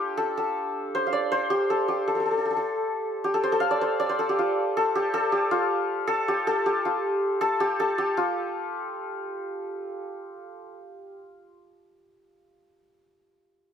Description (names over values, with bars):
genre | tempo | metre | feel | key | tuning
indian classical | 158 BPM | 4/4 | straight | F raga bhupali | A4 = 440 Hz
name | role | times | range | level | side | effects
santur | solo | 0.0-11.5 s | D4 to F5 | -24 LUFS | left 1 dB | none
room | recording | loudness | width
moderate studio reverb, RT60 0.9 s | band playing live in one room | -23 LUFS | side -8 dB against mid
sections
0.0-8.2 A section; 8.2-11.1 B section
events
speeding up 0.0-11.1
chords
none